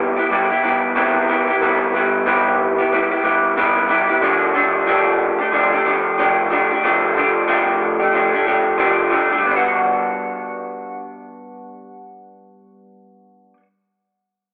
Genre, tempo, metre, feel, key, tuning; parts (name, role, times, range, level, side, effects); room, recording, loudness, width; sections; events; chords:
indie pop; 92 BPM; 4/4; swing 60% on 16ths; G major; A4 = 438 Hz
electric guitar through a small old amp; solo; 0.0-13.6 s; C3 to G4; -18 LUFS; equal; lush chorus, warbly pitch drift, cassette tape
moderate spring reverb, RT60 2.4 s; home recording on cassette, telephone sound; -17 LUFS; mono
0.0-9.4 A section; 9.4-12.1 B section
0.0 Cmaj7; 4.2 F69; 9.4 Gmaj7